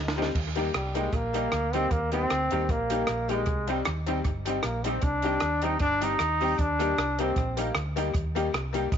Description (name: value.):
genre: ska.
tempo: 154 BPM.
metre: 4/4.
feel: swing 54% on 8ths.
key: unclear.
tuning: A4 = 440 Hz.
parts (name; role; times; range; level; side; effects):
hollow-body short-scale fingered electric bass; bass; 0.0-9.0 s; G1 to Eb2; -32 LUFS; right 1 dB; none.
compact cocktail drum kit; drums; 0.1-9.0 s; crash cymbal, hi-hat, kick drum, rim click, snare drum; -31 LUFS; right 1 dB; tape echo.
vintage hollow-body jazz guitar; accompaniment; 0.2-9.0 s; G3 to G4; -36 LUFS; right 12 dB; none.
tack piano; stabs; 0.2-9.0 s; G3 to G4; -32 LUFS; left 10 dB; none.
clear trombone; melody; 0.7-7.8 s; G3 to Eb4; -28 LUFS; equal; none.
room: light reverb, studio reverb.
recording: 1960s-style stereo with parts hard left and right, nothing above 7.5 kHz.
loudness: -25 LUFS.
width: side -8 dB against mid.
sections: 0.4-9.0 A section.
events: drum fill 0.0-0.4; trombone solo 0.4-9.0.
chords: 0.0 Cm; 6.6 Eb.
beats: | 0.35 0.74 1.14 1.53 | 1.92 2.31 2.70 3.09 | 3.48 3.87 4.26 4.64 | 5.03 5.42 5.81 6.20 | 6.59 6.98 7.37 7.76 | 8.15 8.54 8.93.